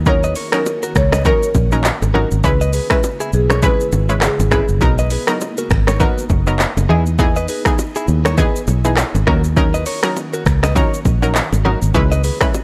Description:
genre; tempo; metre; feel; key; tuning
afrobeats; 101 BPM; 4/4; swing 58% on 16ths; unclear; A4 = 440 Hz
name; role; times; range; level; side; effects
ethereal airy pad; sustained chords; 0.0-12.6 s; C#3 to G#4; -33 LUFS; equal; none
fingered electric bass; bass; 0.0-12.3 s; F#1 to E2; -19 LUFS; equal; none
marimba with medium mallets; melody; 0.1-4.7 s; G#4 to C#5; -23 LUFS; equal; tape echo
analog pluck; accompaniment; 0.1-12.5 s; E3 to B4; -23 LUFS; equal; chorus
afro-pop drum kit; drums; 0.1-12.6 s; finger snaps, handclaps, hi-hat, kick drum, rim click, shaker; -20 LUFS; equal; none
congas and bongos; percussion; 0.1-12.6 s; none; -27 LUFS; equal; none
direct-recorded clean electric guitar; riff; 0.2-12.4 s; E4 to D#5; -27 LUFS; equal; vibrato effect, tape echo
room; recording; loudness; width
little or no reverb; dry, gritty hardware recording; -16 LUFS; mono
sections
0.0-12.6 A section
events
none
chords
0.0 D#m7; 2.4 C#m7; 4.8 Bmaj7; 6.9 Emaj7; 9.3 D#m7; 11.9 C#m7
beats
| 0.06 0.66 1.25 1.84 | 2.44 3.03 3.63 4.22 | 4.82 5.41 6.00 6.60 | 7.19 7.79 8.38 8.97 | 9.57 10.16 10.76 11.35 | 11.94 12.54

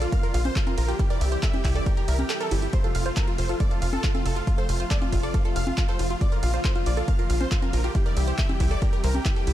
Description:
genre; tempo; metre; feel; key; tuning
uplifting trance; 138 BPM; 4/4; straight; F major; A4 = 440 Hz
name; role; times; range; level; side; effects
supersaw chords; melody; 0.0-9.5 s; F4 to F5; -32 LUFS; equal; sidechain pumping, dub echo
analog pluck; second line; 0.0-9.5 s; F4 to F5; -37 LUFS; left 1 dB; chorus, sidechain pumping, dub echo
analog string pad; sustained chords; 0.0-9.5 s; C3 to F4; -34 LUFS; left 1 dB; ensemble chorus, sidechain pumping
wide unison pluck; arpeggios; 0.0-9.5 s; E4 to F5; -34 LUFS; right 4 dB; sidechain pumping, dub echo
tight sequencer bass; bass; 0.0-9.5 s; F1 to C2; -25 LUFS; equal; sidechain pumping
punchy analog drum machine; drums; 0.0-9.5 s; congas, handclaps, hi-hat, ride cymbal; -33 LUFS; equal; sidechain pumping on hats, sidechain pumping on cymbals, sidechain pumping on perc
electronic kick drum; drums; 0.1-9.3 s; none; -24 LUFS; equal; none
room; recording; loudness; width
digital ambience; dark, warm production; -22 LUFS; side -13 dB against mid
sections
0.0-9.5 A section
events
kick drops out 2.3-2.7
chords
0.0 Bb; 1.0 C; 2.7 F; 6.2 Bb; 8.0 C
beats
0.12 0.56 | 0.99 1.43 1.86 2.30 | 2.73 3.17 3.60 4.04 | 4.47 4.91 5.34 5.78 | 6.21 6.65 7.08 7.52 | 7.95 8.38 8.82 9.26

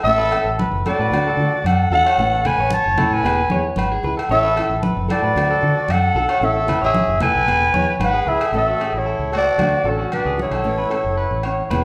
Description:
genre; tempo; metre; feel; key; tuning
highlife guitar band; 113 BPM; 4/4; straight; A major; A4 = 437 Hz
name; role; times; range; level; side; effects
growling clarinet; melody; 0.0-11.8 s; A4 to A5; -21 LUFS; equal; none
electric guitar at the edge of break-up; arpeggios; 0.0-11.8 s; E4 to C#5; -28 LUFS; equal; none
fingered electric bass; bass; 0.0-11.8 s; E1 to D3; -26 LUFS; equal; none
clear trumpet; second line; 0.1-11.8 s; C#4 to C#5; -32 LUFS; equal; none
nylon-string guitar; accompaniment; 0.1-11.8 s; E3 to A4; -30 LUFS; equal; none
congas; percussion; 0.1-11.8 s; none; -29 LUFS; equal; none
agogo bells; percussion; 0.3-11.8 s; none; -29 LUFS; equal; none
room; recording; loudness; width
wet large studio reverb, RT60 1.2 s; band playing live in one room; -18 LUFS; mono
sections
0.0-8.5 A section; 8.5-11.8 B section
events
none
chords
0.1 A; 1.1 D; 2.2 A; 3.2 E; 4.3 A; 5.4 D; 6.4 A; 7.5 E; 8.5 A; 9.6 D; 10.7 A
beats
| 0.06 0.59 1.12 1.65 | 2.18 2.71 3.24 3.77 | 4.30 4.83 5.36 5.89 | 6.42 6.95 7.48 8.01 | 8.54 9.07 9.60 10.12 | 10.65 11.18 11.71

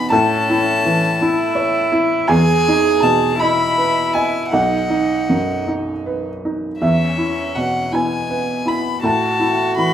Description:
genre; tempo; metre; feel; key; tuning
neoclassical piano and strings; 54 BPM (dotted quarters); 6/8; rubato; E major; A4 = 443 Hz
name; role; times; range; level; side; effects
rich violin; melody; 0.0-9.9 s; E5 to B5; -21 LUFS; left 4 dB; none
rich cello; second line; 0.0-9.9 s; B3 to G#4; -20 LUFS; right 3 dB; none
felt-muted upright piano; accompaniment; 0.0-9.9 s; B1 to B5; -18 LUFS; equal; none
room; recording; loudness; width
wet studio reverb, RT60 0.6 s; rough home demo mix; -15 LUFS; side -10 dB against mid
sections
0.0-9.9 A section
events
none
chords
0.1 A; 2.3 Emaj7; 4.5 B; 6.8 E; 9.0 A5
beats
| 0.12 1.21 | 2.30 3.40 | 4.53 5.67 | 6.82 7.93 | 9.03

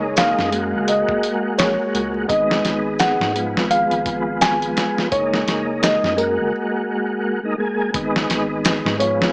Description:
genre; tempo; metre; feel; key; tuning
trip hop; 85 BPM; 4/4; swing 58% on 16ths; G# dorian; A4 = 440 Hz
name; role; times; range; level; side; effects
felt-muted upright piano; melody; 0.0-9.3 s; A#4 to G#5; -20 LUFS; equal; tape echo
tonewheel organ; accompaniment; 0.0-9.3 s; E#3 to G#4; -21 LUFS; equal; chorus vibrato, fast rotary speaker, tremolo, tape echo
warbly tape-like pad; sustained chords; 0.0-9.3 s; D#3 to G#4; -31 LUFS; equal; none
soft dub sub bass; bass; 0.0-9.3 s; F#1 to G#2; -30 LUFS; equal; none
dusty soul sampler-style drum kit; drums; 0.2-9.3 s; hi-hat, kick drum, snare drum; -21 LUFS; equal; none
maracas; percussion; 0.2-8.8 s; none; -31 LUFS; equal; none
room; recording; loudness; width
light reverb, digital ambience; small speaker sound; -17 LUFS; side -36 dB against mid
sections
0.0-7.9 A section; 7.9-9.3 B section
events
break 6.5-7.9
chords
0.0 F#6; 2.3 G#m; 5.1 F#6; 7.9 G#m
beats
0.17 0.88 1.59 | 2.29 3.00 3.71 4.41 | 5.12 5.82 6.53 7.23 | 7.94 8.65

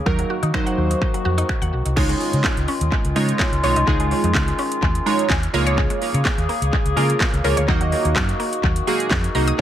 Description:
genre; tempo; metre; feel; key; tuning
dance-pop; 126 BPM; 4/4; straight; Db major; A4 = 440 Hz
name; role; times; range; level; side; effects
mellow woodwind section; sustained chords; 0.0-9.6 s; Db3 to Ab4; -26 LUFS; left 2 dB; sidechain pumping
glassy digital keys; accompaniment; 0.1-9.6 s; Gb3 to Bb5; -23 LUFS; right 3 dB; chorus, sidechain pumping, tape echo
mallet-like synth pluck; arpeggios; 0.1-9.6 s; Gb3 to Eb6; -29 LUFS; left 2 dB; chorus, phaser, sidechain pumping, tape echo
vintage muted fingered electric bass; bass; 0.1-9.6 s; Cb2 to Eb3; -21 LUFS; equal; sidechain pumping
house drum kit; drums; 0.1-9.6 s; crash cymbal, finger snaps, handclaps, hi-hat, kick drum, snare drum; -22 LUFS; equal; tape echo
room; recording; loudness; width
moderate spring reverb, RT60 1.1 s; echo-heavy mix; -17 LUFS; side -11 dB against mid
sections
0.0-2.0 A section; 2.0-9.6 B section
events
synth keys fill 4.8-5.8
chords
0.1 Ebm; 2.0 Dbadd9; 5.5 Bbm7/Db; 7.7 Ebm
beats
| 0.06 0.54 1.01 1.49 | 1.97 2.44 2.92 3.40 | 3.87 4.35 4.83 5.30 | 5.78 6.25 6.73 7.21 | 7.68 8.16 8.63 9.11 | 9.59

